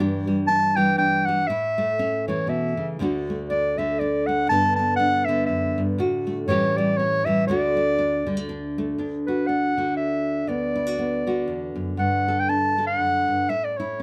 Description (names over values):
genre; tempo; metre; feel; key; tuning
folk; 120 BPM; 3/4; swing 58% on 8ths; D major; A4 = 437 Hz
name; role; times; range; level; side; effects
nylon-string guitar; accompaniment; 0.0-14.0 s; D2 to A4; -27 LUFS; equal; none
warm clarinet; melody; 0.5-14.0 s; B4 to A5; -25 LUFS; equal; none
room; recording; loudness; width
little or no reverb; close, detailed microphones; -23 LUFS; mono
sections
0.0-9.0 A section; 9.0-14.0 B section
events
none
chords
0.0 Em7/G; 1.5 A; 3.0 D; 4.5 Gadd9; 6.0 D/A; 6.5 A7; 7.5 D; 10.5 Bm/D; 12.0 Gsus2; 13.5 A